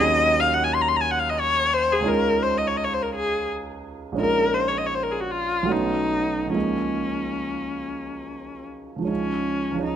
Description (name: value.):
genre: classical, impressionist duo for viola and grand piano.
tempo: 69-88 BPM.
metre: 3/4.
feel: rubato.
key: Db major.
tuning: A4 = 441 Hz.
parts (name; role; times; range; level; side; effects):
rich viola; melody; 0.0-10.0 s; Db4 to C6; -22 LUFS; left 3 dB; none.
warm concert grand piano; accompaniment; 0.0-10.0 s; Bb1 to Gb4; -26 LUFS; right 4 dB; none.
room: moderate scoring stage reverb, RT60 1.8 s.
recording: close, detailed microphones.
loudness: -21 LUFS.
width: side -9 dB against mid.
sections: 0.0-9.1 A section.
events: none.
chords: 0.0 Ebm7; 2.1 Dbadd9; 4.2 Bbm7; 5.7 Cb9; 6.5 Db69; 9.1 Dbadd9.